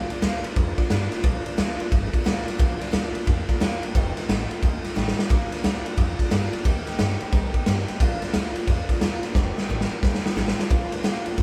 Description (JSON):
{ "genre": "rockabilly", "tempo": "178 BPM", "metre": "4/4", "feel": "swing 64% on 8ths", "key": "Bb major", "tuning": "A4 = 440 Hz", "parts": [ { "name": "picked steel-string acoustic guitar", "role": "accompaniment", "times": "0.0-11.4 s", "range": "F2 to G4", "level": "-33 LUFS", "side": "equal", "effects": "none" }, { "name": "upright bass", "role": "bass", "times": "0.0-11.4 s", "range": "F1 to G2", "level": "-31 LUFS", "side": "equal", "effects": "none" }, { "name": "raw garage drum kit", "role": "drums", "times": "0.1-11.4 s", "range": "kick drum, ride cymbal, snare drum", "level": "-25 LUFS", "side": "equal", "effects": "none" } ], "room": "little or no reverb", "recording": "band playing live in one room", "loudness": "-24 LUFS", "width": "mono", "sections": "0.0-10.7 A section", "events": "drum fill 5.0-5.3, 9.4-10.7", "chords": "0.0 Bb; 4.0 F7; 5.3 Bb; 6.7 Eb; 8.0 Bb; 9.4 F7; 10.7 Bb", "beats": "0.23 0.57 0.91 | 1.25 1.58 1.92 2.26 | 2.60 2.94 3.27 3.61 | 3.95 4.29 4.63 4.96 | 5.30 5.64 5.98 6.31 | 6.65 6.99 7.33 7.66 | 8.00 8.34 8.68 9.02 | 9.35 9.69 10.03 10.37 | 10.71 11.04 11.38" }